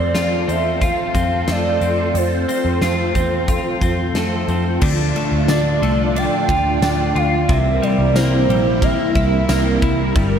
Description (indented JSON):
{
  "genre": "dream pop",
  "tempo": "90 BPM",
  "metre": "4/4",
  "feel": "straight",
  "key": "D minor",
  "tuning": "A4 = 439 Hz",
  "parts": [
    { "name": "warbly nostalgic lead", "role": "melody", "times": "0.0-9.5 s", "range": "C5 to G5", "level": "-22 LUFS", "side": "right 3 dB", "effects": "chorus, tremolo, analog delay" },
    { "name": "string machine, cellos", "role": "sustained chords", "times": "0.0-10.4 s", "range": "G3 to D5", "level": "-21 LUFS", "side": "equal", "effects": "phaser, ensemble chorus" },
    { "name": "twelve-string electric guitar", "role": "arpeggios", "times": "0.0-10.4 s", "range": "G2 to F4", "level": "-22 LUFS", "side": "left 2 dB", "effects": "lush chorus, analog delay" },
    { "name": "vintage muted picked electric bass", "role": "bass", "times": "0.0-10.4 s", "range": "G1 to F2", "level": "-21 LUFS", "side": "equal", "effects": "none" },
    { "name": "huge arena drum kit", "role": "drums", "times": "0.1-10.3 s", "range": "crash cymbal, hi-hat, kick drum, ride cymbal, snare drum, tambourine", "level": "-23 LUFS", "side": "equal", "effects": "none" }
  ],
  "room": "moderate lush hall reverb, RT60 1.9 s, small room ambience",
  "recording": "dreamy mix soaked in reverb",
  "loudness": "-15 LUFS",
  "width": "side -8 dB against mid",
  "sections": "0.0-4.8 A section; 4.8-10.4 B section",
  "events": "none",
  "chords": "0.0 F; 4.8 Dm; 7.5 C7"
}